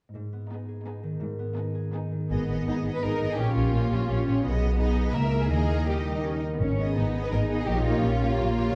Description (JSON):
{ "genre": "classical", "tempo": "168 BPM", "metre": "3/4", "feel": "rubato", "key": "G# minor", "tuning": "A4 = 440 Hz", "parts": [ { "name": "concert harp", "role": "arpeggios", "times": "0.1-8.8 s", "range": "G#2 to A#4", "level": "-33 LUFS", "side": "equal", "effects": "none" }, { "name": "rich symphonic cello section", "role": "bass", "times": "0.2-8.8 s", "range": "G#2 to D#4", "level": "-34 LUFS", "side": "equal", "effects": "none" }, { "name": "rich studio violin section", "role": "melody", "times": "0.5-8.7 s", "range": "G#4 to E5", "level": "-42 LUFS", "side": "equal", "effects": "none" }, { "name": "warm symphonic violin section", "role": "second line", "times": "0.5-8.8 s", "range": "D#4 to B4", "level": "-35 LUFS", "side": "equal", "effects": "none" }, { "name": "rich symphonic viola section", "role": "accompaniment", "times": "0.5-8.7 s", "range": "G3 to A#4", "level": "-35 LUFS", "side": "equal", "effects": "none" }, { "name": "rich symphonic double bass section", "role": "bass", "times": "2.3-8.8 s", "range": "G#1 to D#2", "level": "-30 LUFS", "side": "equal", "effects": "none" }, { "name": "timpani", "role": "percussion", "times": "6.6-7.1 s", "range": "G#2", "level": "-35 LUFS", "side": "equal", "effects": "none" } ], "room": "wet recital hall reverb, RT60 1.6 s", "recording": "dark, warm production, nothing above 10.8 kHz", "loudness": "-26 LUFS", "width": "mono", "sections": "0.2-2.3 A section; 2.3-8.8 B section", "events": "none", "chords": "0.2 G#m; 3.4 Gdim/Bb; 4.4 G#m/B; 5.1 A#dim/C#; 5.5 D#; 6.6 G#m; 7.7 Gdim/Bb" }